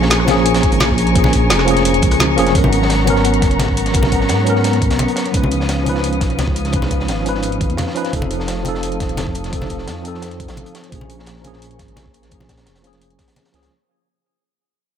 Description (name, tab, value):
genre	liquid drum and bass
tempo	172 BPM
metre	4/4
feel	straight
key	unclear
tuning	A4 = 439 Hz
part	tine electric piano	accompaniment	0.0-13.7 s	E#3 to B4	-18 LUFS	equal	overdrive, fast stereo tremolo, digital delay
part	bright studio string section	sustained chords	0.0-13.7 s	B3 to D#6	-24 LUFS	left 1 dB	sidechain pumping, low-pass filter
part	dark detuned saw bass	bass	0.0-13.7 s	Eb1 to G#2	-20 LUFS	equal	tube saturation
part	crunchy breakbeat drum kit	drums	0.0-13.7 s	hi-hat, snare drum	-28 LUFS	equal	high-pass filter on hats, high-pass filter on snare, high-pass filter on room
part	drum and bass drum kit	drums	0.1-13.7 s	hi-hat, rim click, snare drum	-22 LUFS	equal	none
part	congas	percussion	0.3-13.4 s	none	-23 LUFS	left 2 dB	none
part	electronic kick drum	drums	0.6-13.3 s	none	-19 LUFS	equal	none
room	light reverb, small room ambience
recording	none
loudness	-14 LUFS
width	side -8 dB against mid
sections	0.0-13.7 A section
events	filter sweep on string section 0.0-13.7; fade-out 2.5-13.7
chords	0.0 A#m7; 2.5 G#m11; 5.3 C#9; 8.1 F7; 10.9 A#m7